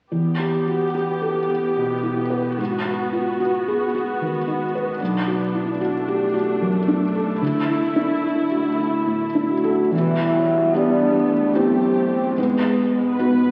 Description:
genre	cinematic, emotional film score for orchestra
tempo	74 BPM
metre	3/4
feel	rubato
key	E minor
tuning	A4 = 440 Hz
part	felt-muted upright piano	accompaniment	0.1-13.5 s	B1 to B4	-23 LUFS	equal	none
part	rich symphonic viola section	accompaniment	0.1-13.5 s	E3 to B4	-28 LUFS	equal	none
part	dark French horn section	sustained chords	9.5-13.5 s	B3 to F#4	-22 LUFS	equal	none
part	rich studio double bass section	bass	9.9-13.1 s	none	barely audible	none	none
part	rich symphonic cello section	bass	9.9-13.5 s	E2 to G#2	-33 LUFS	equal	none
room	wet concert hall reverb, RT60 2.0 s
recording	very old 78 rpm record, vinyl crackle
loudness	-21 LUFS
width	mono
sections	0.1-9.9 A section; 9.9-13.5 B section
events	none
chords	0.1 Em; 2.6 G#m7; 5.0 Bm7; 7.4 Dsus2; 9.9 Em; 12.4 G#m7

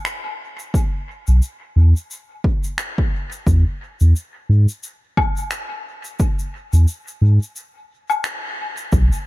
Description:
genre	ambient dub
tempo	88 BPM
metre	4/4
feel	swing 58% on 16ths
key	unclear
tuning	A4 = 440 Hz
part	finger snaps, shaker and woodblock	drums	0.1-9.2 s	none	-26 LUFS	left 2 dB	small room ambience, dub echo
part	electronic kick drum	drums	0.7-9.1 s	none	-19 LUFS	equal	overdrive, small room ambience
part	warm sub bass	bass	1.3-9.1 s	B1 to G#2	-12 LUFS	equal	none
room	little or no reverb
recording	dark, warm production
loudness	-17 LUFS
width	side -19 dB against mid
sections	0.0-8.9 A section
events	break 7.6-8.9; band accent 8.2-8.6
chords	none

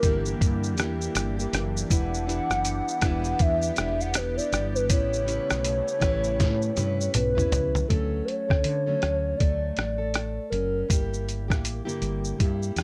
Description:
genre	indie pop, bedroom pop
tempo	80 BPM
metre	4/4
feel	swing 60% on 16ths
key	D major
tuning	A4 = 440 Hz
part	hollow clarinet-like synth lead	melody	0.0-11.2 s	A4 to F#5	-31 LUFS	equal	analog chorus, digital delay
part	fingerpicked plugged-in steel-string acoustic guitar	accompaniment	0.0-12.8 s	G2 to B4	-35 LUFS	equal	lush chorus, vibrato effect
part	phased analog pad	sustained chords	0.0-7.9 s	C#3 to G4	-39 LUFS	equal	phaser, chorus
part	woody fretless electric bass	bass	0.0-12.8 s	E1 to D3	-32 LUFS	equal	none
part	lo-fi sampler-style drum kit	drums	0.0-12.8 s	hi-hat, kick drum, rim click, shaker, snare drum, toms	-28 LUFS	equal	none
room	light reverb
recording	none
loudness	-26 LUFS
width	mono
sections	0.0-7.9 A section; 7.9-12.8 B section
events	drum fill 6.4-7.9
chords	0.0 Gm6; 1.9 Em7; 4.9 A9; 7.9 Dmaj7; 10.9 Gm6

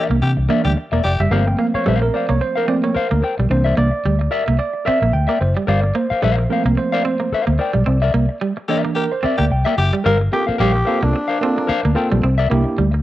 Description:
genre	funk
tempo	110 BPM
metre	4/4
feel	swing 56% on 16ths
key	G dorian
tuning	A4 = 439 Hz
part	breathy tenor saxophone	second line	0.0-1.2, 8.7-10.0 s	G4	-25 LUFS	left 3 dB	cassette tape
part	mellow electric guitar	accompaniment	0.0-13.0 s	Bb4 to G5	-23 LUFS	left 5 dB	cassette tape
part	tine electric piano	stabs	0.0-12.8 s	E3 to G5	-22 LUFS	right 3 dB	auto-pan, cassette tape
part	electric guitar at the edge of break-up	riff	0.1-13.0 s	G3 to C4	-23 LUFS	right 4 dB	cassette tape
part	vintage muted fingered electric bass	bass	0.1-13.0 s	E1 to C3	-17 LUFS	equal	none
part	breathy alto saxophone	melody	10.1-12.0 s	D4 to Bb4	-21 LUFS	left 1 dB	cassette tape, tape echo
room	moderate spring reverb, RT60 1.4 s, studio ambience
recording	home recording on cassette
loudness	-15 LUFS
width	side -14 dB against mid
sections	0.0-10.1 A section; 10.1-13.0 B section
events	band accent 0.0-1.3, 7.9-10.1; tine electric piano solo 0.0-10.1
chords	0.0 C9; 1.3 Gm11; 3.5 C9; 5.7 Gm11; 7.9 C9; 10.1 Gm11; 12.2 C9

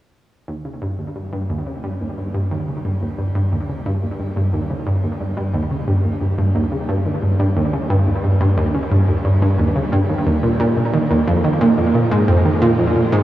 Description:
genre	ambient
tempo	89 BPM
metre	4/4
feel	straight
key	unclear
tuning	A4 = 439 Hz
part	analog pluck	riff	0.5-13.2 s	Eb2 to Eb3	-16 LUFS	equal	chorus, tape echo
room	wet shimmer reverb, RT60 8.3 s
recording	worn, warbling old tape, cassette tape, warbly pitch drift, small room ambience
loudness	-16 LUFS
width	side -14 dB against mid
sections	0.5-13.2 A section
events	fade-in on synth arpeggio sound 0.5-13.2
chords	none

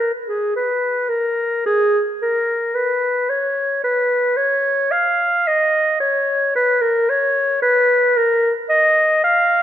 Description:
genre	classical, baroque-style fantasia for unaccompanied clarinet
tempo	55 BPM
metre	3/4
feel	rubato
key	unclear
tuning	A4 = 439 Hz
part	warm clarinet	solo	0.0-9.6 s	G#4 to E#5	-15 LUFS	equal	none
room	moderate concert hall reverb, RT60 1.8 s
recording	none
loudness	-15 LUFS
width	side -11 dB against mid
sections	0.0-9.6 A section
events	none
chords	none

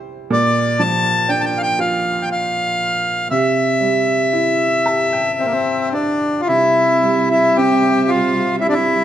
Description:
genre	celtic folk, Celtic slow air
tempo	55-61 BPM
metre	3/4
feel	rubato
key	C mixolydian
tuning	A4 = 444 Hz
part	bright upright piano	accompaniment	0.0-9.0 s	Bb2 to A5	-20 LUFS	right 4 dB	none
part	accordion	melody	0.3-9.0 s	Bb3 to A5	-16 LUFS	left 2 dB	none
part	clear symphonic string section	sustained chords	6.5-9.0 s	C3 to E5	-23 LUFS	equal	none
room	wet recital hall reverb, RT60 1.7 s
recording	faint mains hum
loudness	-14 LUFS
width	side -11 dB against mid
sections	0.0-6.5 A section; 6.5-9.0 B section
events	upright piano fill 4.3-6.5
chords	0.3 Bb; 3.3 C

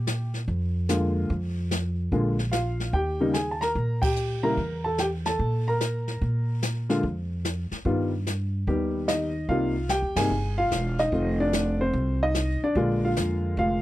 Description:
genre	jazz piano trio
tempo	146 BPM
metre	4/4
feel	swing 66% on 8ths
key	Bb mixolydian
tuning	A4 = 440 Hz
part	dark grand piano	melody	0.0-13.8 s	C3 to Bb5	-26 LUFS	equal	none
part	upright bass	bass	0.0-13.8 s	E1 to Bb2	-27 LUFS	equal	none
part	jazz brush drum kit	drums	0.1-13.8 s	brushed snare drum, hi-hat, kick drum, ride cymbal, snare drum	-31 LUFS	left 1 dB	none
room	little or no reverb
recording	dry, close 1970s-style studio recording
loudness	-24 LUFS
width	side -15 dB against mid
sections	0.0-13.8 A section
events	band accent 4.0, 10.1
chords	0.0 Bb7; 1.3 N.C.; 2.1 Bb7; 2.9 Eb; 4.6 E(b5, no3); 6.2 Bb5; 7.9 Gaug; 9.5 Cm7; 11.1 F7; 12.8 Bb7

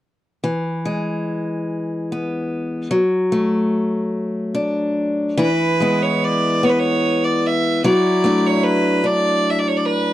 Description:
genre	celtic folk, Celtic slow air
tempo	49 BPM (dotted quarters)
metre	6/8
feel	uneven beats, rubato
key	E mixolydian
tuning	A4 = 440 Hz
part	picked steel-string acoustic guitar	accompaniment	0.4-10.1 s	E3 to E4	-18 LUFS	left 1 dB	none
part	bright fiddle	melody	5.4-10.1 s	B4 to E5	-20 LUFS	right 4 dB	none
room	little or no reverb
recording	dry, close 1970s-style studio recording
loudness	-17 LUFS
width	side -14 dB against mid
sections	0.4-5.4 A section; 5.4-10.1 B section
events	none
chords	0.4 E; 2.9 D/F#; 5.4 E; 7.8 Dadd9/F#

